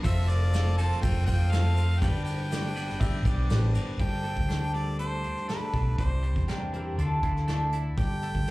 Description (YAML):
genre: folk rock and heartland rock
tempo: 121 BPM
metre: 4/4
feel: straight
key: G mixolydian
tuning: A4 = 440 Hz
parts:
  - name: clear upright piano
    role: accompaniment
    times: 0.0-3.8 s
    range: F4 to D5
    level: -43 LUFS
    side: equal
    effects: plate reverb, slapback echo
  - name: picked twelve-string acoustic guitar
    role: accompaniment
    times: 0.0-8.5 s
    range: C3 to C5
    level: -37 LUFS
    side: left 1 dB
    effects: plate reverb, slapback echo
  - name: twelve-string electric guitar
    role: riff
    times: 0.0-8.5 s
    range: C3 to B4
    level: -36 LUFS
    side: right 1 dB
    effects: none
  - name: hollow-body short-scale fingered electric bass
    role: bass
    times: 0.0-8.5 s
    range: F1 to F2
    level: -26 LUFS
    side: equal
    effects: none
  - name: soft brush drum kit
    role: drums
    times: 0.0-8.5 s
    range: hi-hat, kick drum, ride cymbal, snare drum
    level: -32 LUFS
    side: equal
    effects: none
  - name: tube shaker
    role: percussion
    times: 0.0-3.9 s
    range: none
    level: -51 LUFS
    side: right 2 dB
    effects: none
  - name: clear harmonica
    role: melody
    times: 0.1-8.5 s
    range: B4 to A5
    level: -36 LUFS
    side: right 1 dB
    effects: plate reverb, slapback echo, tape echo
  - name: accordion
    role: sustained chords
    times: 0.1-4.0 s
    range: A4 to D6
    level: -45 LUFS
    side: right 3 dB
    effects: none
  - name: mandolin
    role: second line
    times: 3.0-7.9 s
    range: D4 to E5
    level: -40 LUFS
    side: equal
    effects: plate reverb, slapback echo, tape echo
room: little or no reverb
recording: live gig heard through the venue's PA, club reverb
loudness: -25 LUFS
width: side -20 dB against mid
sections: 0.0-4.0 A section; 4.0-8.5 B section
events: none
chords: 0.0 F; 2.0 G; 6.0 Cadd9; 7.0 Dadd9; 8.0 Gsus2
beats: | 0.04 0.54 1.03 1.52 | 2.02 2.51 3.01 3.50 | 4.00 4.50 4.99 5.49 | 5.99 6.49 6.98 7.48 | 7.98 8.48